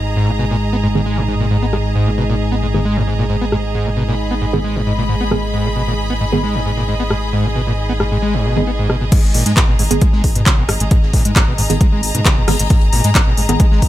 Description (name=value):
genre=driving peak-time techno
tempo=134 BPM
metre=4/4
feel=straight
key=G# minor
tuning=A4 = 440 Hz
part: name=dark detuned saw bass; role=bass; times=0.0-13.9 s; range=F#1 to G#2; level=-20 LUFS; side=equal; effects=sidechain pumping
part: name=analog drone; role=drone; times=0.0-9.2 s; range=G#2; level=-23 LUFS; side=equal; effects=chorus, sidechain pumping
part: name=rich symphonic string section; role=texture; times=0.0-13.9 s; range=G#4 to B5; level=-24 LUFS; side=equal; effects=sidechain pumping
part: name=screaming distorted acid line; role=riff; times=0.2-13.8 s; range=F#2 to B3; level=-20 LUFS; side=equal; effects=distortion, analog chorus, sidechain pumping
part: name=wavetable chord stab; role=stabs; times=1.0-13.6 s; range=D#3 to G#4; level=-23 LUFS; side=right 2 dB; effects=sidechain pumping, dub echo
part: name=techno drum kit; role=drums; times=1.7-13.9 s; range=crash cymbal, handclaps, hi-hat, rim click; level=-19 LUFS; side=left 1 dB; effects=low-pass filter on snare, sidechain pumping on hats, low-pass filter on hats, sidechain pumping on cymbals, low-pass filter on cymbals
part: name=big rock drum kit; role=drums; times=9.1-13.9 s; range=hi-hat, shaker, snare drum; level=-33 LUFS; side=left 3 dB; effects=none
part: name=electronic kick drum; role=drums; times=9.1-13.9 s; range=none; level=-13 LUFS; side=equal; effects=overdrive
room=studio ambience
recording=none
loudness=-13 LUFS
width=side -14 dB against mid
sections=0.0-9.1 A section; 9.1-13.9 B section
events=drop 9.1-13.9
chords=0.0 G#m